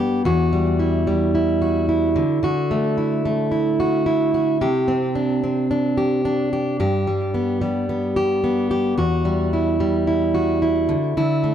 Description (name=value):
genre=pop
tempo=110 BPM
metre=4/4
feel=straight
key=unclear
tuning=A4 = 436 Hz
part: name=fingerpicked plugged-in steel-string acoustic guitar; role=solo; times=0.0-11.5 s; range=E2 to G4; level=-18 LUFS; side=equal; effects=digital delay
room=moderate studio reverb, RT60 0.5 s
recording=dark, warm production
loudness=-18 LUFS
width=side -9 dB against mid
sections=0.0-11.5 A section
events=none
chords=0.2 Emadd9; 2.2 Dadd9; 4.6 Csus2; 6.8 G; 9.0 Emadd9; 10.9 Dsus2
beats=| 0.25 0.80 1.34 1.89 | 2.43 2.98 3.52 4.07 | 4.61 5.16 5.71 6.25 | 6.80 7.34 7.89 8.43 | 8.98 9.52 10.07 10.62 | 11.16